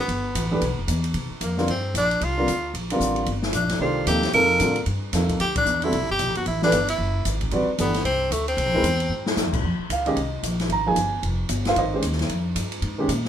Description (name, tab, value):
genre	modal jazz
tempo	226 BPM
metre	4/4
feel	swing 61% on 8ths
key	F minor from 9.6 s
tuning	A4 = 440 Hz
part	edgy tenor saxophone	melody	0.0-9.3 s	A3 to Bb4	-23 LUFS	equal	none
part	upright bass	bass	0.1-13.3 s	F1 to C3	-26 LUFS	equal	none
part	open jazz drum kit	drums	0.1-13.3 s	crash cymbal, hi-hat, kick drum, ride cymbal, snare drum	-29 LUFS	left 1 dB	none
part	dark grand piano	accompaniment	0.5-13.1 s	C3 to Bb5	-23 LUFS	right 1 dB	none
room	light reverb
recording	minimal, uncompressed stereo recording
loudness	-20 LUFS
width	side -9 dB against mid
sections	0.0-1.1 A section; 1.1-9.6 B section; 9.6-13.3 C section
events	band accent 5.5; drum fill 9.1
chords	0.1 G69; 1.1 C9sus4; 5.4 D9sus4; 8.6 C7b13; 9.6 Fm11